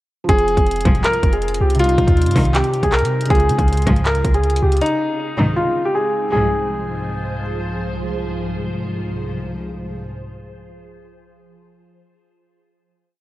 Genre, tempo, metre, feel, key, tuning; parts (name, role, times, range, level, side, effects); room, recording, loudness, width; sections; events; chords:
hip hop, trap; 159 BPM; 4/4; half-time; F minor; A4 = 439 Hz
felt-muted upright piano; accompaniment; 0.2-4.8 s; C3 to Ab4; -24 LUFS; right 2 dB
dark baby grand piano; melody; 0.3-7.4 s; Eb4 to Bb4; -19 LUFS; left 1 dB; ping-pong delay
glassy FM pad; sustained chords; 0.7-10.1 s; C3 to C5; -30 LUFS; equal; ensemble chorus, built-in reverb, phaser
clean 808-style bass; bass; 0.3-4.8 s; F1 to Db3; -19 LUFS; equal
trap drum kit; drums; 0.3-4.9 s; handclaps, hi-hat, kick drum; -19 LUFS; equal
dark studio string section; stabs; 0.9-10.1 s; C2 to F3; -22 LUFS; equal
light reverb, studio ambience; worn, warbling old tape, cassette tape, warbly pitch drift; -16 LUFS; side -16 dB against mid
0.3-6.3 hook; 6.3-9.3 final chord
0.3 Fm; 1.8 Cm; 3.3 Db; 4.8 Ab; 6.3 Fm